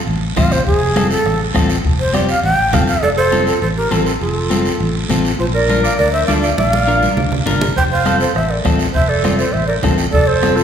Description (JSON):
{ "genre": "latin, cumbia", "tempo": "203 BPM", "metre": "4/4", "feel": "straight", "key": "F major", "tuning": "A4 = 438 Hz", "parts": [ { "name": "fingered electric bass", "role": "bass", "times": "0.1-10.6 s", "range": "F1 to D2", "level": "-19 LUFS", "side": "equal", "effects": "none" }, { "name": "congas", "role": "percussion", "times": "0.1-10.6 s", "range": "none", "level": "-23 LUFS", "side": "right 1 dB", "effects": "none" }, { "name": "guiro", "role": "percussion", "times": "0.1-10.6 s", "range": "none", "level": "-27 LUFS", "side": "right 5 dB", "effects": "none" }, { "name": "mellow shakuhachi", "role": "melody", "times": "0.4-10.6 s", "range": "Ab4 to G5", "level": "-18 LUFS", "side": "equal", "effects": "none" }, { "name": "electric guitar at the edge of break-up", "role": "accompaniment", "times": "0.4-10.6 s", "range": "C4 to C5", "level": "-21 LUFS", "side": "left 4 dB", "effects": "none" }, { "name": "bombo", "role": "percussion", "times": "0.4-2.9, 7.8-10.6 s", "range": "none", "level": "-20 LUFS", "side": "equal", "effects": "none" }, { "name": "growling clarinet", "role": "second line", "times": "3.0-10.6 s", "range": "F4 to D5", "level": "-20 LUFS", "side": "right 4 dB", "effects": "none" } ], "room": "wet recital hall reverb, RT60 1.7 s", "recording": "recorded in a church or concert hall", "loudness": "-13 LUFS", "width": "side -8 dB against mid", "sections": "0.0-3.0 A section; 3.0-10.6 B section", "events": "shakuhachi solo 0.0-3.0; drum fill 6.6-7.8", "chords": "0.0 F; 5.4 Bb; 7.8 F" }